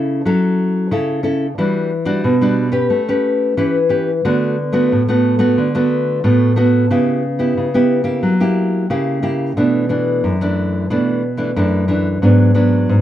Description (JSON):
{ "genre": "samba", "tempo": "90 BPM", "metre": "4/4", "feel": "straight", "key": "F# minor", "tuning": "A4 = 440 Hz", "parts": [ { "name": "nylon-string guitar", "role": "solo", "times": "0.0-13.0 s", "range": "F#2 to B4", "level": "-14 LUFS", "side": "equal", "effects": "none" } ], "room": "moderate small room reverb, RT60 0.5 s", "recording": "worn, warbling old tape, cassette tape, warbly pitch drift", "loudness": "-14 LUFS", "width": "side -12 dB against mid", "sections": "0.0-13.0 A section", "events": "none", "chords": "0.0 F#m7; 1.6 Em9; 2.9 A9; 4.2 D6; 6.9 C#m7b5; 8.2 F#7b9; 9.6 Bm7; 12.2 G#m7b5" }